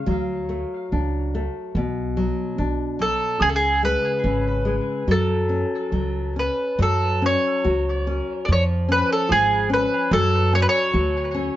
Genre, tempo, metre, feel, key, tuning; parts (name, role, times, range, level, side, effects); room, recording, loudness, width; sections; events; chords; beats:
fado-style ballad; 72 BPM; 2/4; rubato; F# harmonic minor; A4 = 440 Hz
nylon-string guitar; accompaniment; 0.0-11.6 s; B2 to F#4; -25 LUFS; left 2 dB
upright bass; bass; 0.1-11.5 s; G#1 to F#2; -24 LUFS; right 1 dB
mandolin; melody; 3.0-11.6 s; G#4 to D5; -22 LUFS; right 1 dB; tape echo
moderate studio reverb, RT60 0.6 s; nothing above 7.5 kHz; -19 LUFS; side -13 dB against mid
0.0-6.8 A section; 6.8-11.6 A section
0.1 D; 1.8 Bm; 3.4 C#5; 5.1 F#5; 8.5 C#/E#; 10.1 F#5
| 0.07 0.92 | 1.76 2.58 | 3.41 4.24 | 5.07 5.92 | 6.78 7.64 | 8.48 9.29 | 10.11 10.93